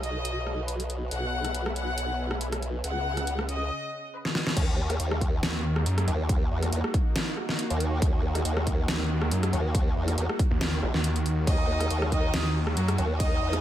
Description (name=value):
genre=heavy wobble dubstep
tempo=139 BPM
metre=4/4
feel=swing 54% on 16ths, half-time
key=Eb phrygian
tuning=A4 = 440 Hz
part: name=rich studio violin section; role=melody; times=0.0-4.4, 11.5-13.6 s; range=Eb4 to B5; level=-32 LUFS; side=left 1 dB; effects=tape echo
part: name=supersaw pad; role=sustained chords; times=0.0-13.6 s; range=Db3 to B5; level=-36 LUFS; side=right 1 dB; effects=sidechain pumping
part: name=formant-sweep wobble bass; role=bass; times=0.0-13.6 s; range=Bb1 to Fb2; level=-28 LUFS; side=equal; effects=chorus, overdrive
part: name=dubstep drum kit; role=drums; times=0.0-13.6 s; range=crash cymbal, hi-hat, ride cymbal, rim click, snare drum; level=-31 LUFS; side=equal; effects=overdrive
part: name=electronic kick drum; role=drums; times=4.6-13.3 s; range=none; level=-26 LUFS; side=equal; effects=overdrive
part: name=snarling distorted saw bass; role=bass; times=5.4-6.1, 8.9-13.0 s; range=Eb2 to Gb2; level=-26 LUFS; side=equal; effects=distortion, overdrive
room=digital ambience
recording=none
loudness=-25 LUFS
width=side -12 dB against mid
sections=0.0-4.6 A section; 4.6-13.6 B section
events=filter sweep on supersaw synth 0.0-4.6; drum fill 4.2-4.6; drop 4.6-13.6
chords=0.0 B; 1.1 E/B; 2.8 Dbm; 4.6 Ebm